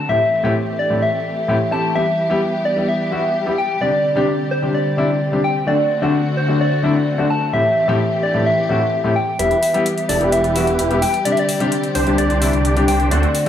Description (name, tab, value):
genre	EDM, festival progressive house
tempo	129 BPM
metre	4/4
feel	straight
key	E minor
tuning	A4 = 440 Hz
part	soft struck synth lead	melody	0.0-13.5 s	C5 to A5	-19 LUFS	equal	chorus, tape echo
part	dark symphonic string section	sustained chords	0.0-13.5 s	D3 to G4	-23 LUFS	equal	none
part	warm grand piano	accompaniment	0.1-13.5 s	A2 to G4	-20 LUFS	left 2 dB	none
part	big supersaw lead	riff	9.4-13.3 s	A3 to D5	-22 LUFS	right 1 dB	low-pass filter
part	wide detuned saw bass	bass	9.4-13.2 s	E1 to D2	-20 LUFS	equal	chorus
part	electronic hi-hat	drums	9.4-13.5 s	none	-28 LUFS	equal	low-pass filter on hats, low-pass filter on room
room	moderate digital room reverb, RT60 1.0 s, digital ambience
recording	small room ambience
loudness	-15 LUFS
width	side -10 dB against mid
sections	0.0-9.4 A section; 9.4-13.5 B section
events	build-up 9.4-13.5; filter sweep on supersaw synth 9.4-13.5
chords	0.1 Am7; 2.0 Em; 3.8 Csus2; 5.7 D7; 7.5 Am7; 9.4 Em; 11.3 Csus2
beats	| 0.09 0.56 1.02 1.49 | 1.95 2.42 2.88 3.35 | 3.81 4.28 4.74 5.21 | 5.67 6.14 6.60 7.07 | 7.53 8.00 8.46 8.93 | 9.39 9.86 10.32 10.79 | 11.25 11.72 12.18 12.65 | 13.11